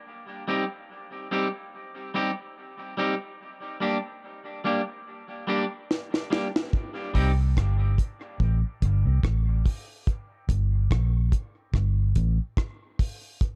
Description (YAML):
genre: dub reggae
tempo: 72 BPM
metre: 4/4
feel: swing 56% on 16ths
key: C dorian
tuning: A4 = 441 Hz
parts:
  - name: clean electric guitar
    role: accompaniment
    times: 0.5-7.3 s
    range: G3 to G4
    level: -32 LUFS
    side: equal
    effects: dub echo
  - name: deep reggae drum kit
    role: drums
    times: 5.9-13.6 s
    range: hi-hat, kick drum, rim click, snare drum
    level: -28 LUFS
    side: equal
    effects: none
  - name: vintage muted fingered electric bass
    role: bass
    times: 7.2-12.4 s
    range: G1 to C2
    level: -25 LUFS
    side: equal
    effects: none
room: small room reverb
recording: echo-heavy mix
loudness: -27 LUFS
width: mono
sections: 0.0-13.6 A section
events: drum fill 5.9-6.7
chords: 0.1 Cm; 3.4 Gm; 6.7 C5; 10.1 Gm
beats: | 0.07 0.90 1.73 2.57 | 3.40 4.24 5.07 5.90 | 6.74 7.57 8.40 9.24 | 10.07 10.91 11.74 12.58 | 13.41